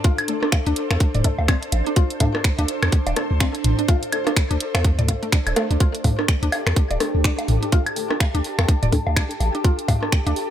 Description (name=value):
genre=minimal techno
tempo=125 BPM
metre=4/4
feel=swing 59% on 16ths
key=unclear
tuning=A4 = 445 Hz
part: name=mallet-like synth pluck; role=riff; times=0.0-10.3 s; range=A3 to D5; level=-28 LUFS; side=right 1 dB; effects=lush chorus, sidechain pumping, digital delay
part: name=electronic kick drum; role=drums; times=0.0-10.2 s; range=none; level=-18 LUFS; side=equal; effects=overdrive
part: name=garage drum kit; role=drums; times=0.0-10.5 s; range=finger snaps, hi-hat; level=-26 LUFS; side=right 1 dB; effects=overdrive
part: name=booming analog drum machine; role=percussion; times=0.0-10.3 s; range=rim click, toms, woodblock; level=-25 LUFS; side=left 2 dB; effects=none
part: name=ethereal airy pad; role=texture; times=0.0-10.5 s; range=D4 to A5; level=-28 LUFS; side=equal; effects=ensemble chorus, built-in reverb, phaser, sidechain pumping
part: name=filtered dub chord stab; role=stabs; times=0.3-10.0 s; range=A3 to A4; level=-31 LUFS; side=left 2 dB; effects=phaser, ensemble chorus, vintage 12-bit sampler grit, digital delay
part: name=punchy sub bass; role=bass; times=0.7-10.3 s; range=D1 to E2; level=-22 LUFS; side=equal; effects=sidechain pumping
part: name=flickering grainy texture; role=texture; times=6.5-10.5 s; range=G4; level=-35 LUFS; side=right 1 dB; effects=built-in reverb, sidechain pumping
room=little or no reverb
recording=none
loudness=-18 LUFS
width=side -10 dB against mid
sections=0.0-10.5 A section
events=none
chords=0.0 D5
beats=| 0.04 0.52 1.00 1.48 | 1.96 2.44 2.92 3.40 | 3.88 4.36 4.84 5.32 | 5.80 6.28 6.76 7.24 | 7.72 8.20 8.68 9.16 | 9.64 10.12